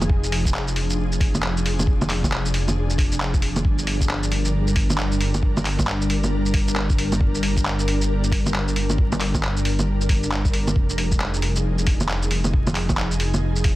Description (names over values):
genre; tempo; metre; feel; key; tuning
future garage; 135 BPM; 4/4; swing 62% on 16ths; F dorian; A4 = 439 Hz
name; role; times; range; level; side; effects
ethereal airy pad; sustained chords; 0.0-13.8 s; F3 to Bb4; -27 LUFS; left 1 dB; ensemble chorus, built-in reverb, sidechain pumping
dark detuned saw bass; bass; 0.0-13.8 s; F1 to G1; -24 LUFS; equal; sidechain pumping
lo-fi sampler-style drum kit; drums; 0.0-13.8 s; bongos, handclaps, hi-hat, shaker; -25 LUFS; equal; small room ambience, soft clipping on snare
electronic kick drum; drums; 0.1-13.8 s; none; -21 LUFS; equal; small room ambience
room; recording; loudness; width
little or no reverb; dense, heavily limited modern master, vinyl crackle; -19 LUFS; side -16 dB against mid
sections
0.0-13.8 A section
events
none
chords
0.0 Fm; 3.6 Gm; 10.8 Fm7